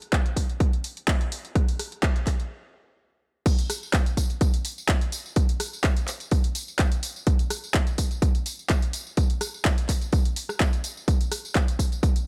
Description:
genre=house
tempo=126 BPM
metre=4/4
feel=swing 54% on 16ths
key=none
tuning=none
part: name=punchy analog drum machine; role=drums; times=0.0-12.2 s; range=crash cymbal, handclaps, hi-hat, rim click, tambourine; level=-33 LUFS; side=equal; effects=sidechain pumping on hats, sidechain pumping on cymbals, sidechain pumping on perc
part: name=electronic kick drum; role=drums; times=0.1-12.1 s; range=none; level=-24 LUFS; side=equal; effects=overdrive
room=digital ambience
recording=none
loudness=-25 LUFS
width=mono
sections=0.0-3.5 A section; 3.5-12.3 B section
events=build-up 0.0-3.5; filter sweep 0.0-3.5; stop 2.5-3.5; drop 3.5-12.3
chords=none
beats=0.13 0.60 1.08 | 1.55 2.03 2.51 2.98 | 3.46 3.94 4.41 4.89 | 5.36 5.84 6.32 6.79 | 7.27 7.75 8.22 8.70 | 9.17 9.65 10.13 10.60 | 11.08 11.55 12.03

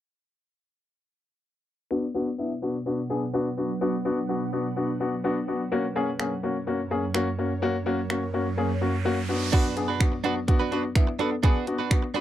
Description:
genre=dance-pop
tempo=126 BPM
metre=4/4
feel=straight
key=unclear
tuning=A4 = 443 Hz
part: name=warm baby grand piano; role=accompaniment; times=1.9-12.2 s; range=A#3 to A4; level=-26 LUFS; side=left 2 dB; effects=sidechain pumping, low-pass filter
part: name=ethereal airy pad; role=sustained chords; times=2.5-9.5 s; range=F#2 to F#5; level=-32 LUFS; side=right 3 dB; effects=ensemble chorus, built-in reverb, phaser, sidechain pumping, low-pass filter
part: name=pop drum kit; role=drums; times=6.2-12.2 s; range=crash cymbal, finger snaps, hi-hat, kick drum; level=-22 LUFS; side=right 1 dB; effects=none
part: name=riser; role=sound effects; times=8.4-9.5 s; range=none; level=-37 LUFS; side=right 5 dB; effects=none
part: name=direct-recorded clean electric guitar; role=riff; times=9.5-12.2 s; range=D4 to B4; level=-28 LUFS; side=right 8 dB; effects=wide subtle chorus
room=light reverb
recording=dry, close 1970s-style studio recording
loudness=-24 LUFS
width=side -12 dB against mid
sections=1.9-9.5 A section; 9.5-12.2 B section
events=filter sweep 1.9-9.5; riser 8.4-9.5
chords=1.9 Bm; 5.7 F#; 9.3 Bm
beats=| 1.91 2.39 2.86 3.34 | 3.81 4.29 4.77 5.24 | 5.72 6.20 6.67 7.15 | 7.62 8.10 8.58 9.05 | 9.53 10.01 10.48 10.96 | 11.43 11.91

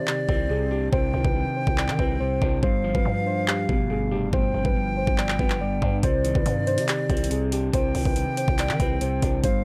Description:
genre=hip hop, trap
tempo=141 BPM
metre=4/4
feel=half-time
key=C harmonic minor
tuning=A4 = 444 Hz
part: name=muted felt-like synth keys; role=melody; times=0.0-9.6 s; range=G4 to D5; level=-31 LUFS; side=equal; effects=chorus, low-pass filter
part: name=silver concert flute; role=second line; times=0.0-9.6 s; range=D5 to G5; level=-34 LUFS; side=equal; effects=analog delay
part: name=electric guitar at the edge of break-up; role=accompaniment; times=0.0-9.6 s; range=G2 to D4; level=-30 LUFS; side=equal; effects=low-pass filter
part: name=growling 808-style bass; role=bass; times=0.0-9.6 s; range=F1 to Eb3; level=-30 LUFS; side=equal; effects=none
part: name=trap drum kit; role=drums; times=0.1-9.5 s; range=handclaps, hi-hat, kick drum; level=-28 LUFS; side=equal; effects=none
room=little or no reverb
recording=dry, gritty hardware recording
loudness=-24 LUFS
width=mono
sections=0.0-9.6 A section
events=break 0.0-6.0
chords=0.0 Cmadd9; 2.6 G7; 6.0 Cmadd9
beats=0.07 0.50 | 0.93 1.35 1.78 2.20 | 2.63 3.05 3.48 3.90 | 4.33 4.76 5.18 5.61 | 6.03 6.46 6.88 7.31 | 7.74 8.16 8.59 9.01 | 9.44

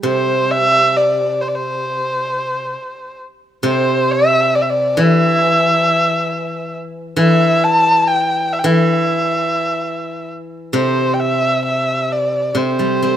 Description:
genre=chinese traditional, Chinese chamber ensemble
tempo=67 BPM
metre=4/4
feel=straight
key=C gong mode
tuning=A4 = 440 Hz
part: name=steel-string zither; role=accompaniment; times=0.0-13.2 s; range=C3 to C4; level=-18 LUFS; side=equal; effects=none
part: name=dark erhu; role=melody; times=0.1-13.2 s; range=C5 to A5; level=-16 LUFS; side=equal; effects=none
room=light reverb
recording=close, detailed microphones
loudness=-13 LUFS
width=side -10 dB against mid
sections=0.0-13.2 A section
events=none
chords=none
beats=| 0.05 0.95 1.85 2.75 | 3.64 4.53 5.42 6.30 | 7.19 8.07 8.96 9.85 | 10.75 11.65 12.55

